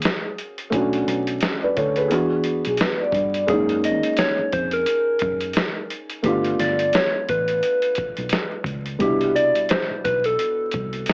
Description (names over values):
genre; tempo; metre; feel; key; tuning
lo-fi hip hop; 87 BPM; 4/4; swing 60% on 16ths; unclear; A4 = 440 Hz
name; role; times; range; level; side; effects
soft struck synth lead; melody; 0.0-11.1 s; G4 to Eb5; -21 LUFS; equal; chorus
felt-muted upright piano; accompaniment; 0.0-11.1 s; B2 to F5; -24 LUFS; equal; none
trip hop sampler-style drum kit; drums; 0.0-11.1 s; hi-hat, kick drum, snare drum; -25 LUFS; equal; none
vintage muted fingered electric bass; bass; 0.7-11.0 s; G1 to G2; -30 LUFS; equal; none
vibraphone with soft mallets; second line; 2.7-3.5 s; G#4 to D5; -23 LUFS; equal; tape echo
room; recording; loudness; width
moderate studio reverb, RT60 0.5 s; worn, warbling old tape, cassette tape, vinyl crackle, warbly pitch drift, small speaker sound; -19 LUFS; side -37 dB against mid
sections
0.0-11.1 A section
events
none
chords
0.0 Ebm11 (rootless); 0.7 Bm7; 2.1 E9; 3.5 Gb69; 6.2 G7; 9.0 Cmaj9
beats
0.04 | 0.73 1.42 2.11 2.80 | 3.48 4.17 4.87 5.55 | 6.24 6.93 7.62 8.31 | 9.00 9.69 10.38 11.07